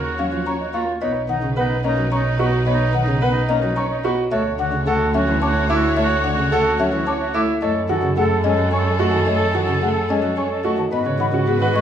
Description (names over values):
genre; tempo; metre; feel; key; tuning
classical, minimalist pattern music; 109 BPM; 3/4; straight; unclear; A4 = 441 Hz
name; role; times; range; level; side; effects
buzzing marimba with soft mallets; melody; 0.0-11.8 s; Ab4 to Bb5; -26 LUFS; left 9 dB; none
warm oboe; second line; 0.0-11.8 s; D#4 to A4; -26 LUFS; right 1 dB; none
rich studio string section; sustained chords; 0.0-11.8 s; D#4 to Db5; -30 LUFS; left 2 dB; none
bright concert grand piano; arpeggios; 0.0-11.8 s; Db4 to Db5; -23 LUFS; right 4 dB; none
clear double bass; bass; 0.0-11.8 s; B1 to Ab2; -23 LUFS; right 2 dB; none
chamber organ, principal chorus; accompaniment; 0.2-11.8 s; Db3 to Db4; -25 LUFS; left 1 dB; none
mellow concert flute; arpeggios; 0.2-11.8 s; Eb5 to D6; -29 LUFS; left 3 dB; none
room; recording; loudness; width
wet large studio reverb, RT60 1.3 s; none; -17 LUFS; side -9 dB against mid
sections
0.0-10.9 A section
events
none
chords
0.0 Ebm7; 1.0 Bmaj7; 4.3 Dmaj7; 7.6 Gbmadd9; 10.9 Abm7